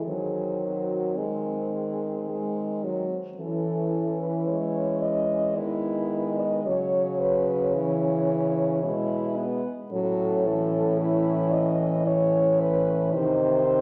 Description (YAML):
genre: classical, lyrical piece for horn quartet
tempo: 55 BPM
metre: 3/4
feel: rubato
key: C# minor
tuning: A4 = 439 Hz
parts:
  - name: warm French horn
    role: melody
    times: 0.0-13.8 s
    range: E4 to D#5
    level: -30 LUFS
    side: equal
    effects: none
  - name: warm French horn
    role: second line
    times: 0.0-13.8 s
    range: B3 to E4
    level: -34 LUFS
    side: equal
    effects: none
  - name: mellow French horn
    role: accompaniment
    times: 0.0-13.8 s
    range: D#3 to G#3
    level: -30 LUFS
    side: equal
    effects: none
  - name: warm French horn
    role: bass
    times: 0.0-13.8 s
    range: A2 to E3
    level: -34 LUFS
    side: equal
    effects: none
room: wet scoring stage reverb, RT60 1.6 s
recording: none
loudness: -26 LUFS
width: mono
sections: 0.0-13.8 A section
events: none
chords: 0.1 G#7/D#; 3.4 C#m/E; 6.7 C#m; 9.9 F#m/A; 13.1 G#/B# (rootless)